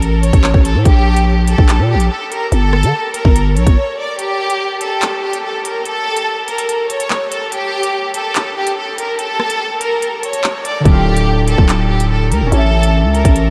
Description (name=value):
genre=hip hop, drill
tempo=144 BPM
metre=4/4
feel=half-time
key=unclear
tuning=A4 = 441 Hz
part: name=clear studio violin section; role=melody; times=0.0-13.5 s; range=G4 to D5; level=-20 LUFS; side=equal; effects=diffuse ambient delay
part: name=growling 808-style bass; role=bass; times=0.0-3.8, 10.9-13.5 s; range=D1 to D3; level=-15 LUFS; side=equal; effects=none
part: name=drill drum kit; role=drums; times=0.0-13.5 s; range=handclaps, hi-hat, kick drum, rim click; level=-18 LUFS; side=equal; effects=vintage 12-bit sampler grit
part: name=concert harp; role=accompaniment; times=10.8-13.5 s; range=D3 to E5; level=-21 LUFS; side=equal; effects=none
room=moderate huge ambient reverb, RT60 9.2 s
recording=dreamy mix soaked in reverb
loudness=-15 LUFS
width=mono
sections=0.0-13.5 A section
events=break 3.8-4.2, 4.2-10.9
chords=0.0 A; 0.9 Gmadd9/Bb; 2.5 Gm; 4.2 N.C.; 10.9 Dmadd9; 12.5 A